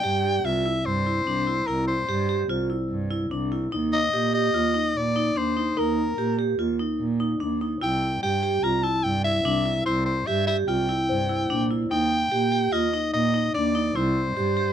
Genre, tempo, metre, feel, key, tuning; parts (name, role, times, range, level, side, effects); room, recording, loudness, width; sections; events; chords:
contemporary instrumental, chamber music in an uneven meter; 146 BPM; 5/4; straight; A4 = 440 Hz
raspy soprano saxophone; melody; 0.0-14.7 s; Bb4 to Bb5; -25 LUFS; left 2 dB
vibraphone with hard mallets; arpeggios; 0.0-14.7 s; D4 to G4; -26 LUFS; equal
dark cello; bass; 0.0-14.7 s; C2 to Bb2; -27 LUFS; right 3 dB
celesta; texture; 0.0-7.3, 11.1-12.1 s; Bb4 to A5; -34 LUFS; left 2 dB
little or no reverb; close, detailed microphones; -22 LUFS; side -9 dB against mid
0.0-14.7 A section
0.0 C; 3.7 Eb5; 7.8 C; 11.9 Eb; 14.0 C